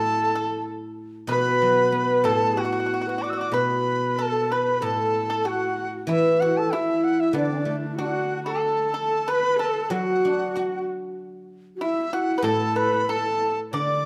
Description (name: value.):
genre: chinese traditional, Chinese chamber ensemble.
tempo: 94 BPM.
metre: 2/4.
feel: rubato.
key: unclear.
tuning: A4 = 440 Hz.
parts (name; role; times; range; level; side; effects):
reedy dizi; melody; 0.0-14.1 s; D5 to E6; -29 LUFS; equal; none.
clear horsehead fiddle; second line; 0.0-14.1 s; D4 to D5; -31 LUFS; equal; none.
pipa; second line; 0.0-14.1 s; D4 to D5; -34 LUFS; equal; none.
xiao; second line; 0.0-14.1 s; D4 to D5; -30 LUFS; equal; none.
guzheng; accompaniment; 0.0-14.1 s; A2 to F#4; -29 LUFS; equal; none.
room: moderate recital hall reverb, RT60 1.5 s.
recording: dark, warm production.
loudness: -23 LUFS.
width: mono.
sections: 0.0-8.6 A section; 8.6-14.1 B section.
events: none.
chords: none.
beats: 0.36 | 0.98 1.61 | 2.25 2.89 | 3.54 4.19 | 4.83 5.46 | 6.09 6.71 | 7.34 7.99 | 8.64 9.28 | 9.92 10.56 | 11.19 11.82 | 12.45 13.09 | 13.74.